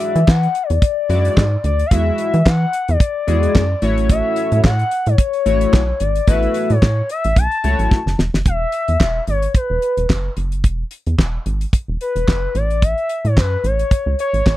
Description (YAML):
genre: early-eighties boogie funk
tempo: 110 BPM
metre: 4/4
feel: swing 56% on 16ths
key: unclear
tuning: A4 = 440 Hz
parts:
  - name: gliding portamento lead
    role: melody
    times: 0.0-14.6 s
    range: B4 to A5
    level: -20 LUFS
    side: left 3 dB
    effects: chorus, phaser
  - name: chorused polysynth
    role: accompaniment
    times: 0.0-8.0 s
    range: G#3 to E5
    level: -21 LUFS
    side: left 2 dB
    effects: none
  - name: damped 70s drum kit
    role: drums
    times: 0.0-14.6 s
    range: handclaps, hi-hat, kick drum, snare drum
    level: -15 LUFS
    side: equal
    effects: none
  - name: rubbery square bass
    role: bass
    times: 0.2-14.6 s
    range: E1 to E3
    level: -18 LUFS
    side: equal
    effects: none
room: little or no reverb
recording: dry, close 1970s-style studio recording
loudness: -15 LUFS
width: side -15 dB against mid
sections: 0.0-8.5 A section; 8.5-14.6 B section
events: drum fill 7.9-8.5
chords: 0.0 E9; 3.8 A6; 8.5 Eadd9; 12.6 A6